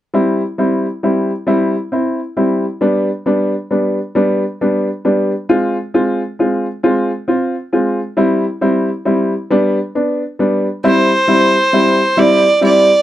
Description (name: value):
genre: pop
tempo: 45 BPM (dotted quarters)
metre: 6/8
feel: straight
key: C major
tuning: A4 = 440 Hz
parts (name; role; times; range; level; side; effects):
- clear upright piano; accompaniment; 0.1-12.9 s; G3 to F4; -14 LUFS; equal; none
- warm violin; melody; 10.9-13.0 s; C5 to D5; -11 LUFS; right 2 dB; none
room: little or no reverb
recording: dry, close 1970s-style studio recording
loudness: -13 LUFS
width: side -13 dB against mid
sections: 0.1-10.8 A section; 10.8-13.0 B section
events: none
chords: 0.1 C; 2.8 G; 5.5 Fm; 8.2 C/G; 9.5 G; 10.8 C